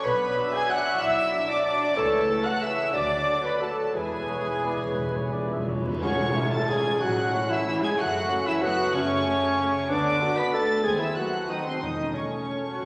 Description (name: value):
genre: classical, orchestral ballroom waltz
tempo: 164-204 BPM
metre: 3/4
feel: rubato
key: A major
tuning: A4 = 440 Hz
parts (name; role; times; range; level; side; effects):
- rich studio violin section; melody; 0.0-12.9 s; G#5 to B6; -34 LUFS; equal; none
- concert flute; second line; 0.0-12.9 s; G#4 to B5; -37 LUFS; equal; none
- warm clarinet; second line; 0.0-12.9 s; B#3 to G#5; -32 LUFS; equal; none
- warm studio violin section; second line; 0.0-12.9 s; G#4 to B5; -39 LUFS; equal; none
- dark studio viola section; accompaniment; 0.0-12.8 s; A3 to E5; -39 LUFS; equal; none
- warm bassoon; accompaniment; 0.0-12.9 s; E3 to F#4; -35 LUFS; equal; none
- concert harp; arpeggios; 0.0-12.9 s; F#2 to E6; -42 LUFS; equal; none
- dark trumpet section; stabs; 0.0-5.7 s; G#4 to G#5; -33 LUFS; equal; none
- warm studio cello section; bass; 0.0-12.9 s; B#2 to G#4; -38 LUFS; equal; none
- dark cor anglais; second line; 0.1-12.9 s; B#3 to E5; -37 LUFS; equal; none
- dark studio double bass section; bass; 0.1-12.1 s; F#1 to E2; -43 LUFS; equal; none
- dark French horn section; sustained chords; 0.4-12.9 s; F#3 to B4; -37 LUFS; equal; none
- cymbal swell and tam-tam; percussion; 3.9-7.3 s; none; -39 LUFS; equal; none
- timpani; percussion; 3.9-6.5, 11.8-12.9 s; E2 to A2; -35 LUFS; equal; none
room: wet scoring stage reverb, RT60 1.7 s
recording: vinyl crackle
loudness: -25 LUFS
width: mono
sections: 0.0-6.0 A section; 6.0-12.9 B section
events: timpani fill 3.9-6.0; band accent 6.0-6.4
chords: 0.0 Bm; 2.0 A/C#; 2.9 D; 3.9 E; 6.0 A; 8.0 F#m; 9.9 Bm/D; 10.8 D#dim7; 11.8 A/E